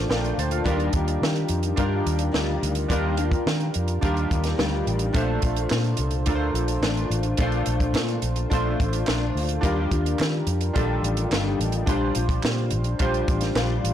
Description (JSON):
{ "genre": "indie pop, bedroom pop", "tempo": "107 BPM", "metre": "4/4", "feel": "straight", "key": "Bb major", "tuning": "A4 = 441 Hz", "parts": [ { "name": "chorused retro synth keys", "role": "accompaniment", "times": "0.0-13.9 s", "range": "D4 to A5", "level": "-28 LUFS", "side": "right 3 dB", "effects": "none" }, { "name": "nylon-string guitar", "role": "accompaniment", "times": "0.0-13.9 s", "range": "Bb2 to F4", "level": "-28 LUFS", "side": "left 7 dB", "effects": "ensemble chorus, warbly pitch drift" }, { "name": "vintage muted fingered electric bass", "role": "bass", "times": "0.0-13.9 s", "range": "G1 to Eb3", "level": "-25 LUFS", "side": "equal", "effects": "none" }, { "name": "compact cocktail drum kit", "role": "drums", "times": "0.1-13.9 s", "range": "hi-hat, kick drum, snare drum", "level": "-27 LUFS", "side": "right 1 dB", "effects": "soft clipping on snare" }, { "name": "group handclap", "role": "percussion", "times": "5.7-13.7 s", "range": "none", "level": "-37 LUFS", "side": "right 5 dB", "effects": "none" } ], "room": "light reverb, small room ambience", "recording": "blown-out, overdriven recording, overdrive", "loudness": "-21 LUFS", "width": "side -10 dB against mid", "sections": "0.0-13.9 A section", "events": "none", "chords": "0.0 Bbmaj7; 0.7 Ebmaj9; 5.1 Bbmaj7; 9.6 Ebmaj9; 11.9 Bb6" }